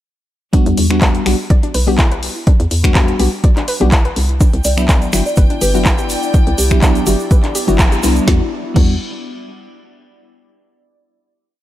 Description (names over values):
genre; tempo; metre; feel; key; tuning
deep house; 124 BPM; 4/4; swing 53% on 16ths; E minor; A4 = 441 Hz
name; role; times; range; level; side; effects
soft round pluck; arpeggios; 0.5-9.0 s; D4 to D5; -25 LUFS; left 2 dB; chorus, sidechain pumping, tape echo
mellow FM electric piano; stabs; 0.5-9.0 s; F#3 to F#4; -19 LUFS; left 1 dB; chorus, phaser, vintage 12-bit sampler grit, sidechain pumping, tape echo
deep house drum kit; drums; 0.5-8.9 s; crash cymbal, finger snaps, handclaps, hi-hat, snare drum; -21 LUFS; left 1 dB; none
electronic kick drum; drums; 0.5-8.9 s; none; -12 LUFS; equal; none
hollow knocking FM bass; bass; 0.7-9.0 s; G1 to E2; -17 LUFS; equal; sidechain pumping
warbly tape-like pad; sustained chords; 4.8-8.5 s; B3 to D5; -26 LUFS; left 3 dB; chorus, built-in reverb, phaser, sidechain pumping
egg shaker; percussion; 4.4-8.3 s; none; -25 LUFS; right 3 dB; none
warm studio violin section; texture; 4.4-8.3 s; G5; -28 LUFS; left 2 dB; sidechain pumping
buzzing marimba with soft mallets; melody; 4.6-7.6 s; G4 to D5; -23 LUFS; equal; tape echo
room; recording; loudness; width
light reverb; none; -11 LUFS; side -14 dB against mid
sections
0.5-8.3 drop; 8.3-10.2 final chord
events
drop 0.5-8.3; band accent 7.8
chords
0.5 Em7; 4.2 Cmaj9#11; 8.3 Em7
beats
| 0.54 1.02 1.50 1.99 | 2.47 2.95 3.44 3.92 | 4.41 4.89 5.37 5.86 | 6.34 6.83 7.31 7.79 | 8.28 8.76